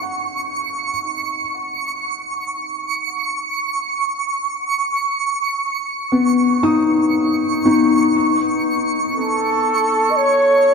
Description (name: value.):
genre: ambient.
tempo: free time.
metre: none.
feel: none.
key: unclear.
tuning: A4 = 440 Hz.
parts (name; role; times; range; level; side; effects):
felt-muted upright piano; arpeggios; 0.0-10.7 s; B3 to D#6; -17 LUFS; left 3 dB; tape echo.
twinkling granular texture; texture; 0.0-10.7 s; C#6; -21 LUFS; right 3 dB; built-in reverb.
mellow flugelhorn; melody; 9.2-10.7 s; A4 to D#5; -14 LUFS; right 1 dB; none.
room: wet cathedral reverb, RT60 7.0 s.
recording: dark, warm production.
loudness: -16 LUFS.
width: side -5 dB against mid.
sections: 0.0-10.7 A section.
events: none.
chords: 0.0 Badd9.